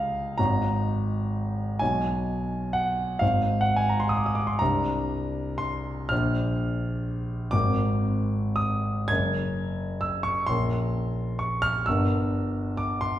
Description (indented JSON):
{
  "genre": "classical, impressionist solo piano",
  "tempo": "42 BPM (dotted quarters)",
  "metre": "6/8",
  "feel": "uneven beats, rubato",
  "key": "unclear",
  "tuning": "A4 = 441 Hz",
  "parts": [
    { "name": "warm concert grand piano", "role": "solo", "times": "0.0-13.2 s", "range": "Gb1 to Ab6", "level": "-24 LUFS", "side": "equal", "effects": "none" }
  ],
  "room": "wet recital hall reverb, RT60 1.6 s",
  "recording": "heard from further back in the room",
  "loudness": "-24 LUFS",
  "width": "side -12 dB against mid",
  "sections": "0.0-13.2 A section",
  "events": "none",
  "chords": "0.4 Absus24; 1.8 Badd9; 3.2 Ab; 4.6 Csus2; 6.1 Bbadd9; 7.5 Abadd9; 9.1 Gbadd9; 10.5 Bbm; 11.9 Gm6"
}